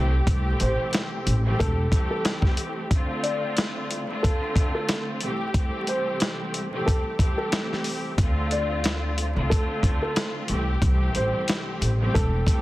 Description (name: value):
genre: hip hop, boom-bap hip-hop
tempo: 91 BPM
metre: 4/4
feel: swing 58% on 16ths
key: unclear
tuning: A4 = 439 Hz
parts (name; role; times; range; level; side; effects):
- rich studio string section; accompaniment; 0.0-12.6 s; C2 to G4; -29 LUFS; equal; cassette tape, high-pass filter, low-pass filter
- upright bass; bass; 0.0-1.9, 8.2-12.4 s; E1 to D2; -24 LUFS; equal; none
- dusty soul sampler-style drum kit; drums; 0.3-12.6 s; hi-hat, kick drum, snare drum; -24 LUFS; equal; none
- dark upright piano; melody; 0.6-12.6 s; A4 to D5; -30 LUFS; equal; high-pass filter, low-pass filter
room: little or no reverb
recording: dense, heavily limited modern master, vinyl crackle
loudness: -22 LUFS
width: side -17 dB against mid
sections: 0.0-12.6 A section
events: break 2.9-8.2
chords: 0.0 Am7; 2.9 Dm7; 5.2 Am7/C; 8.2 Dm7; 10.5 Am7